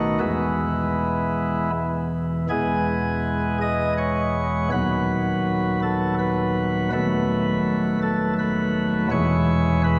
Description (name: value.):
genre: classical, chorale-style piece for pipe organ.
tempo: 81 BPM.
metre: 3/4.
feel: straight.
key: E major.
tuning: A4 = 440 Hz.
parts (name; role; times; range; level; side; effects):
pipe organ, sparkling flutes; solo; 0.0-10.0 s; D#1 to D#5; -23 LUFS; equal; none.
room: wet church reverb, RT60 3.1 s.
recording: none.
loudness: -23 LUFS.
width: mono.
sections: 0.0-2.5 A section; 2.5-10.0 B section.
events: none.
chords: 0.2 E; 4.7 B/D#; 9.1 E.